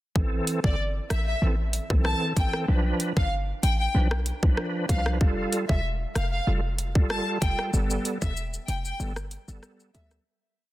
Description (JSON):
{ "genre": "dancehall", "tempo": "95 BPM", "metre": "4/4", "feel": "straight", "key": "A minor", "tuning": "A4 = 440 Hz", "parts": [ { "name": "bright tonewheel organ", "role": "accompaniment", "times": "0.2-10.2 s", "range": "E3 to B4", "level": "-30 LUFS", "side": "right 1 dB", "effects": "chorus vibrato, fast rotary speaker" }, { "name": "short 808-style bass", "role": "bass", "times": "0.2-10.2 s", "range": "E1 to D2", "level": "-26 LUFS", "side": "equal", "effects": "none" }, { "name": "island pop drum kit", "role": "drums", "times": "0.2-10.3 s", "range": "hi-hat, kick drum, rim click, shaker", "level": "-26 LUFS", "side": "equal", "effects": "soft clipping on snare" }, { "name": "warm studio violin section", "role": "melody", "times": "0.6-10.1 s", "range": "D5 to A5", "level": "-32 LUFS", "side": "left 1 dB", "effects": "tape echo" } ], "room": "digital ambience", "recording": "dense, heavily limited modern master", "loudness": "-23 LUFS", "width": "side -16 dB against mid", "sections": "0.2-10.3 verse", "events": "fade-out 7.7-10.3; break 9.0-10.3", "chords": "0.2 Am; 2.7 Bdim; 5.2 Fadd9; 7.7 Gadd9" }